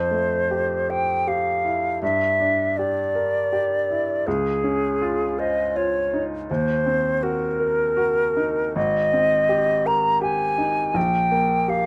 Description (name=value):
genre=classical, impressionist duo for flute and grand piano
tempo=81 BPM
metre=3/4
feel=rubato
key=unclear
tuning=A4 = 440 Hz
part: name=hollow concert flute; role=melody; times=0.0-11.9 s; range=G#4 to Bb5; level=-23 LUFS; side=equal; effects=none
part: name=clear baby grand piano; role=accompaniment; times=0.0-11.9 s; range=Ab1 to C5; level=-28 LUFS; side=equal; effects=none
room=light reverb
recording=close, detailed microphones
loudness=-22 LUFS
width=mono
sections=0.0-11.9 A section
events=none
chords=0.0 Fmaj9; 2.0 Gm6; 4.3 C#maj9; 6.5 Ebm6; 8.8 Abmaj9; 11.0 Bb5